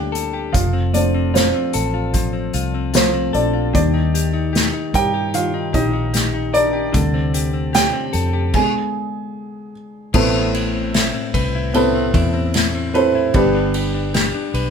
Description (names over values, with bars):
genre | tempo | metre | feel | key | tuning
pop ballad | 75 BPM | 4/4 | straight | A minor from 10.1 s | A4 = 445 Hz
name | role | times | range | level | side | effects
dark baby grand piano | accompaniment | 0.0-14.7 s | G2 to G#5 | -20 LUFS | right 2 dB | none
direct-recorded clean electric guitar | arpeggios | 0.0-14.7 s | A2 to B4 | -24 LUFS | left 6 dB | none
vintage muted fingered electric bass | bass | 0.0-14.7 s | F1 to G2 | -22 LUFS | equal | none
unplugged drum kit | drums | 0.1-14.7 s | crash cymbal, hi-hat, kick drum, ride cymbal, snare drum | -20 LUFS | left 1 dB | none
room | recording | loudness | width
moderate studio reverb, RT60 0.7 s | band playing live in one room | -16 LUFS | side -7 dB against mid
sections
0.0-10.1 A section; 10.1-14.7 A section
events
grand piano solo 0.0-10.1; stop 8.5-10.1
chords
0.0 Gmadd9; 0.5 F; 3.7 Eb; 6.9 D7sus4; 8.5 G#dim/D; 10.1 Amadd9; 13.3 G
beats
| 0.55 1.34 2.15 2.94 | 3.75 4.54 5.34 6.14 | 6.95 7.75 8.54 9.35 | 10.14 10.95 11.74 12.54 | 13.35 14.14